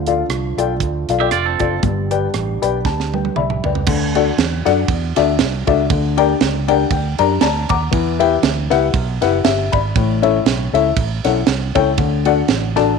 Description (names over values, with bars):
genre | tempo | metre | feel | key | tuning
uptempo gospel | 118 BPM | 4/4 | swing 55% on 8ths | D major from 3.9 s | A4 = 440 Hz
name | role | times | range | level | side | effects
dark upright piano | accompaniment | 0.0-12.9 s | G2 to D6 | -17 LUFS | left 10 dB | none
mellow French horn section | sustained chords | 0.0-3.9 s | F3 to G4 | -28 LUFS | right 5 dB | none
fingered electric bass | bass | 0.0-13.0 s | F1 to F#2 | -21 LUFS | right 3 dB | none
tight funk drum kit | drums | 0.1-12.9 s | crash cymbal, hi-hat, kick drum, ride cymbal, rim click, snare drum, toms | -20 LUFS | right 7 dB | none
twangy electric guitar | second line | 1.2-1.8 s | C4 to E5 | -20 LUFS | right 13 dB | none
room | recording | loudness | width
light reverb, studio reverb | 1960s-style stereo with parts hard left and right | -14 LUFS | side -5 dB against mid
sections
0.0-3.9 A section; 3.9-13.0 B section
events
upright piano fill 2.3-3.9, 6.4-7.9; drum fill 2.9-3.9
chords
0.0 Dm; 1.8 G; 3.9 D; 5.9 Gm; 7.9 Em; 10.0 A; 12.0 D